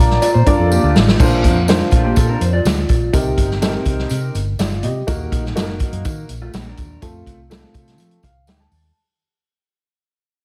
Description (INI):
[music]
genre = uptempo 1960s-style soul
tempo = 124 BPM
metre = 4/4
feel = straight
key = Bb major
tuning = A4 = 440 Hz
[part]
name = vibraphone with soft mallets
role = melody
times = 0.0-0.7 s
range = Bb5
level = -25 LUFS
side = equal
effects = plate reverb
[part]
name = warm upright piano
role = accompaniment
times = 0.0-8.9 s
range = Bb2 to A5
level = -23 LUFS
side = equal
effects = none
[part]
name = vintage muted fingered electric bass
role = bass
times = 0.0-8.9 s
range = Gb1 to F3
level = -21 LUFS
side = equal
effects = none
[part]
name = swinging big-band drum kit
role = drums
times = 0.1-8.8 s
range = crash cymbal, hi-hat, kick drum, snare drum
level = -20 LUFS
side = equal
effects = none
[part]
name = electric guitar through a small old amp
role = riff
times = 0.2-3.1, 6.4-7.0 s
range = A3 to D5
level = -24 LUFS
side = equal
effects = spring reverb
[part]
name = tambourine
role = percussion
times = 0.2-8.8 s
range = none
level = -38 LUFS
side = equal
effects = none
[sound]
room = moderate large studio reverb, RT60 0.9 s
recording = heavily compressed radio sound, multiband compression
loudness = -16 LUFS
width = mono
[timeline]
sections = 0.0-1.2 A section; 1.2-9.0 B section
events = drum fill 0.7-1.2; fade-out 1.2-9.0; upright piano fill 8.0-9.0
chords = 0.0 Bb; 1.2 Bbadd9; 3.1 Cm7; 5.1 Ebm; 7.0 F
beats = 0.22 0.71 | 1.19 1.68 2.16 2.65 | 3.13 3.62 4.11 4.59 | 5.08 5.56 6.05 6.53 | 7.02 7.50 7.99 8.47